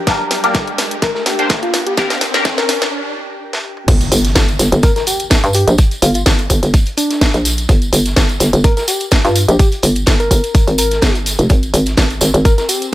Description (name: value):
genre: bass house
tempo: 126 BPM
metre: 4/4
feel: swing 54% on 16ths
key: G phrygian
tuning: A4 = 440 Hz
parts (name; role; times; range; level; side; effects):
- riser and impact; sound effects; 0.0-5.8 s; none; -24 LUFS; equal; none
- granular cloud pad; texture; 0.0-2.9, 12.3-12.9 s; C4 to Ab5; -28 LUFS; equal; built-in reverb, sidechain pumping
- band-passed chord stab; stabs; 0.1-2.5 s; Bb3 to C5; -18 LUFS; left 2 dB; phaser, ensemble chorus, sidechain pumping, tape echo
- crunchy breakbeat drum kit; drums; 0.1-12.8 s; hi-hat, snare drum; -28 LUFS; equal; none
- electronic kick drum; drums; 0.1-12.6 s; none; -12 LUFS; equal; none
- garage drum kit; drums; 0.1-12.9 s; crash cymbal, hi-hat, snare drum, toms; -18 LUFS; equal; high-pass filter on hats, high-pass filter on snare, high-pass filter on toms, high-pass filter on cymbals
- soft struck synth lead; melody; 1.0-12.9 s; D4 to Bb4; -20 LUFS; left 2 dB; chorus
- hollow knocking FM bass; bass; 3.9-12.6 s; F1 to G2; -14 LUFS; equal; tube saturation, sidechain pumping
- tambourine; percussion; 3.9-12.9 s; none; -22 LUFS; right 1 dB; none
room: little or no reverb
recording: high-pass filter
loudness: -11 LUFS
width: side -15 dB against mid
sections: 0.0-3.9 A section; 3.9-12.9 B section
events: build-up 0.0-3.9; drum fill 0.0-2.9, 3.5-3.9; riser 0.0-2.9; filter sweep on synth stab 0.0-3.9; break 2.9-3.9; drop 3.9-12.9; impact 3.9-5.8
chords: 0.0 Gm; 3.9 N.C.; 11.5 Ab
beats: | 0.07 0.55 1.02 1.50 | 1.98 2.45 2.93 3.40 | 3.88 4.36 4.83 5.31 | 5.79 6.26 6.74 7.21 | 7.69 8.17 8.64 9.12 | 9.59 10.07 10.55 11.02 | 11.50 11.97 12.45 12.93